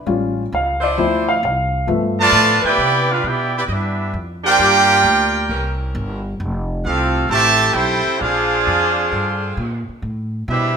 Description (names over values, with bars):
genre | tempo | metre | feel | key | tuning
jazz, big band swing | 133 BPM | 4/4 | swing 67% on 8ths | C major | A4 = 440 Hz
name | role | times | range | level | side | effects
dark baby grand piano | accompaniment | 0.0-2.7 s | F3 to F5 | -18 LUFS | left 2 dB | none
upright bass | bass | 0.1-10.8 s | F1 to C3 | -23 LUFS | equal | none
clear saxophone section | sustained chords | 0.8-9.8 s | C3 to C5 | -25 LUFS | equal | none
brilliant trumpet section | melody | 2.2-10.8 s | C4 to A5 | -15 LUFS | right 2 dB | none
bright trombone section | second line | 2.2-10.8 s | C3 to Ab4 | -21 LUFS | right 3 dB | none
room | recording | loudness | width
wet large studio reverb, RT60 1.2 s | minimal, uncompressed stereo recording | -15 LUFS | side -6 dB against mid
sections
0.0-2.8 A section; 2.8-10.8 B section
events
grand piano solo 0.0-2.8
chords
0.1 A7b13; 1.0 Dm9; 1.9 G13; 2.8 Cmaj9; 4.6 Gm7; 5.5 C7b9; 6.4 Fmaj9; 8.2 Bb13; 10.0 Am11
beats
0.07 0.53 | 0.98 1.43 1.88 2.33 | 2.79 3.24 3.69 4.14 | 4.59 5.05 5.50 5.95 | 6.40 6.86 7.31 7.76 | 8.21 8.66 9.12 9.57 | 10.02 10.47